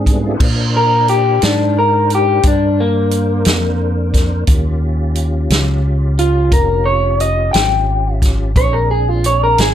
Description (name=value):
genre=slow blues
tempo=59 BPM (dotted quarters)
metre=12/8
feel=straight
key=Bb mixolydian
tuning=A4 = 440 Hz
part: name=tonewheel organ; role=sustained chords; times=0.0-9.7 s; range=G3 to C5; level=-25 LUFS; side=equal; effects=slow rotary speaker, chorus vibrato
part: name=fingered electric bass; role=bass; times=0.0-9.7 s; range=F1 to Bb2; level=-16 LUFS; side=equal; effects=none
part: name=vintage drum kit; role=drums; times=0.1-9.7 s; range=crash cymbal, hi-hat, kick drum, snare drum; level=-16 LUFS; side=equal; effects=none
part: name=electric guitar through a small old amp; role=melody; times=0.8-9.7 s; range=Bb3 to G5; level=-15 LUFS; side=left 1 dB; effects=vibrato effect
room=light reverb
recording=none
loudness=-12 LUFS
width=side -10 dB against mid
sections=0.4-9.7 A section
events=clean electric guitar solo 0.4-9.7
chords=0.4 Bb9; 4.5 Eb9; 8.6 Bb9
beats=| 0.41 1.43 2.44 3.46 | 4.48 5.50 6.52 7.54 | 8.56 9.59